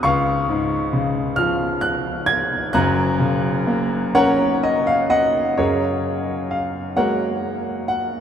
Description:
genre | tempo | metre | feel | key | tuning
classical, lyrical solo piano | 41-45 BPM (dotted quarters) | 6/8 | rubato | F# major | A4 = 440 Hz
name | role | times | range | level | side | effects
clear grand piano | solo | 0.0-8.2 s | F#1 to G#6 | -18 LUFS | equal | none
room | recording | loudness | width
wet cathedral reverb, RT60 6.2 s | in a vast, echoing space | -18 LUFS | side -8 dB against mid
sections
0.0-5.6 A section; 5.6-8.2 B section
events
grand piano fill 4.2-5.6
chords
0.0 C#; 2.7 F#; 5.6 F#add9

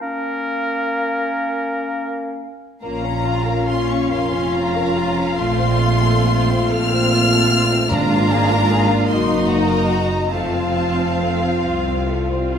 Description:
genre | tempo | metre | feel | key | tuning
classical | 41-51 BPM (dotted quarters) | 6/8 | rubato | Bb minor | A4 = 438 Hz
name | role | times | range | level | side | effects
bright clarinet | second line | 0.0-2.5 s | Db4 | -28 LUFS | left 3 dB | none
clear oboe | second line | 0.0-2.4 s | Bb4 | -25 LUFS | right 1 dB | none
mellow large flute ensemble | second line | 0.0-2.5 s | F5 | -33 LUFS | equal | none
mellow bassoon | accompaniment | 0.0-2.5 s | Bb3 | -25 LUFS | equal | none
rich studio violin section | melody | 2.8-11.6 s | A5 to F6 | -23 LUFS | left 3 dB | none
rich studio violin section | second line | 2.8-12.6 s | A3 to F5 | -24 LUFS | left 3 dB | none
rich studio viola section | accompaniment | 2.8-12.6 s | C4 to Gb4 | -24 LUFS | right 2 dB | none
warm French horn section | sustained chords | 2.8-12.6 s | A3 to F4 | -22 LUFS | left 4 dB | none
dark studio cello section | bass | 2.8-12.6 s | C2 to Bb2 | -22 LUFS | right 3 dB | none
rich studio double bass section | bass | 2.8-12.6 s | F1 to C2 | -24 LUFS | right 4 dB | none
timpani | percussion | 7.9-9.0 s | Ab2 | -27 LUFS | equal | none
room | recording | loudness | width
moderate recital hall reverb, RT60 1.5 s | none | -16 LUFS | side -8 dB against mid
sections
0.0-2.8 A section; 2.8-12.6 A section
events
none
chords
0.0 Bbm; 5.4 F/Bb; 7.9 Bb7/Ab; 9.1 Ebm/Gb; 10.3 F

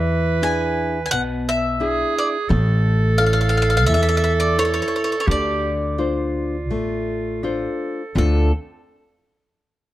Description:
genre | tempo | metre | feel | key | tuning
italian folk, Italian serenade | 86 BPM | 4/4 | rubato | D minor | A4 = 440 Hz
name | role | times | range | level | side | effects
bright clarinet | second line | 0.0-8.5 s | F4 to B4 | -24 LUFS | right 5 dB | none
nylon-string guitar | accompaniment | 0.0-8.5 s | B2 to C#5 | -25 LUFS | left 3 dB | none
upright bass | bass | 0.0-8.5 s | A1 to E2 | -21 LUFS | equal | none
bowl-back mandolin | melody | 0.4-8.5 s | A4 to G#5 | -23 LUFS | left 2 dB | none
room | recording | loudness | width
moderate spring reverb, RT60 1.3 s | dark, warm production | -18 LUFS | side -14 dB against mid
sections
0.0-8.2 A section; 8.2-9.9 B section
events
none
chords
0.0 E7; 2.5 A; 5.3 Dm7

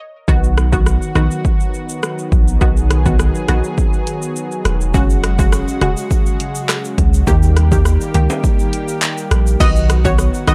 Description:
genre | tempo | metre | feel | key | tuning
dancehall | 103 BPM | 4/4 | straight | B major | A4 = 441 Hz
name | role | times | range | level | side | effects
punchy chord stab | accompaniment | 0.3-10.5 s | C#3 to G4 | -22 LUFS | equal | chorus
lush unison pad | sustained chords | 0.3-10.5 s | C#3 to G#4 | -26 LUFS | equal | chorus, sidechain pumping
punchy sub bass | bass | 0.3-10.5 s | E1 to D#2 | -17 LUFS | equal | none
deep house drum kit | drums | 0.3-10.5 s | crash cymbal, handclaps, hi-hat, kick drum, rim click, shaker | -19 LUFS | equal | none
tube shaker and timbales | percussion | 4.9-10.5 s | none | -32 LUFS | equal | none
analog pluck | melody | 9.6-10.5 s | C#5 to D#5 | -23 LUFS | equal | chorus, delay
room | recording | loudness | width
digital ambience | dark, warm production | -15 LUFS | mono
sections
0.3-9.6 A section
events
stop 0.0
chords
0.3 B; 4.9 F#sus2; 7.3 D#; 9.6 B

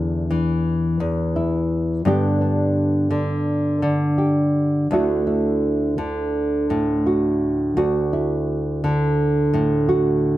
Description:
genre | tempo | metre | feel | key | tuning
folk, solo fingerstyle acoustic guitar | 84 BPM | 4/4 | rubato | D major | A4 = 440 Hz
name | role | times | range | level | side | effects
nylon-string guitar | solo | 0.0-10.4 s | D2 to G4 | -18 LUFS | equal | none
room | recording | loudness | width
light reverb | dark, warm production | -18 LUFS | side -15 dB against mid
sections
0.0-10.4 A section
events
none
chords
0.0 Dsus2/E; 2.1 G; 4.9 Dadd9

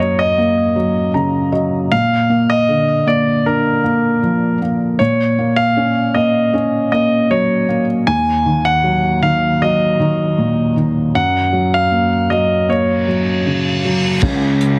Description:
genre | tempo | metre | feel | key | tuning
pop ballad | 78 BPM | 4/4 | straight | F# major | A4 = 440 Hz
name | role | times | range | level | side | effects
bright concert grand piano | melody | 0.0-13.8 s | A#4 to G#5 | -19 LUFS | equal | none
felt-muted upright piano | accompaniment | 0.0-14.8 s | D#2 to A#5 | -18 LUFS | equal | none
reverse cymbal | sound effects | 13.0-14.2 s | none | -25 LUFS | equal | none
rich studio cello section | bass | 14.2-14.8 s | C#2 | -19 LUFS | equal | none
unplugged drum kit | drums | 14.2-14.8 s | crash cymbal, hi-hat, kick drum | -22 LUFS | equal | none
room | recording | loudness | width
light reverb, small room ambience | heavily compressed radio sound, multiband compression | -16 LUFS | mono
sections
0.0-14.2 A section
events
felt piano fill 0.8-1.9; reverse cymbal 13.0-14.2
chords
0.0 F#; 1.9 A#; 5.0 F#/A#; 8.1 D#m; 11.2 F#; 14.2 N.C.

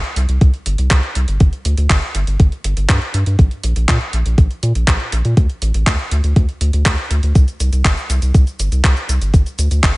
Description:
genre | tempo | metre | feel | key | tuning
italo disco | 121 BPM | 4/4 | straight | unclear | A4 = 440 Hz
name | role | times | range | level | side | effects
clean 12-bit digital drum machine | drums | 0.0-9.9 s | cabasa, handclaps, hi-hat | -21 LUFS | equal | overdrive, gated reverb
round analog bass | bass | 0.2-9.9 s | G1 to Bb2 | -16 LUFS | equal | tube saturation
electronic kick drum | drums | 0.4-9.9 s | none | -12 LUFS | equal | overdrive
room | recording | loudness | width
little or no reverb | nothing above 10.9 kHz | -13 LUFS | side -22 dB against mid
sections
0.0-10.0 A section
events
none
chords
none

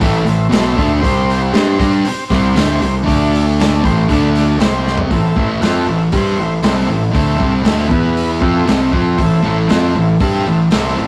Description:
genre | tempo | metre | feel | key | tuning
garage rock duo or trio | 118 BPM | 4/4 | straight | A minor | A4 = 440 Hz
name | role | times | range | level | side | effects
combo organ | sustained chords | 0.0-11.1 s | B3 to D5 | -25 LUFS | equal | none
fuzz guitar | riff | 0.0-11.1 s | A2 to G4 | -17 LUFS | equal | distortion
growling picked electric bass | bass | 0.0-11.1 s | A1 to G2 | -21 LUFS | equal | overdrive
crunchy breakbeat drum kit | drums | 0.0-10.8 s | hi-hat, kick drum, snare drum, toms | -21 LUFS | equal | none
room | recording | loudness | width
light reverb | rough rehearsal-room recording, tube saturation | -14 LUFS | mono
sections
0.0-5.1 A section; 5.1-11.1 B section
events
drum fill 4.8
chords
0.0 Am; 1.0 C5; 3.1 D5; 3.8 C5; 4.1 D5; 4.6 C5; 5.1 Am; 7.9 E5; 8.4 Am

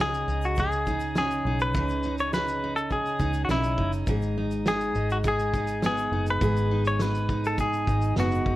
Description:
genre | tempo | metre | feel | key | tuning
acoustic pop | 103 BPM | 4/4 | straight | unclear | A4 = 442 Hz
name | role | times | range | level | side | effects
direct-recorded clean electric guitar | melody | 0.0-8.6 s | E4 to C#5 | -28 LUFS | left 1 dB | warbly pitch drift
picked steel-string acoustic guitar | accompaniment | 0.0-8.6 s | G#2 to G#4 | -28 LUFS | right 1 dB | none
vintage muted fingered electric bass | bass | 0.0-8.6 s | F#1 to C#2 | -29 LUFS | equal | none
loose indie drum kit | drums | 0.1-8.6 s | kick drum, shaker, snare drum | -31 LUFS | equal | none
egg shaker | percussion | 0.1-8.5 s | none | -57 LUFS | left 7 dB | none
room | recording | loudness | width
light reverb | worn, warbling old tape, cassette tape, warbly pitch drift | -23 LUFS | side -15 dB against mid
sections
0.0-8.6 A section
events
none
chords
0.0 C#sus2; 4.1 G#m7

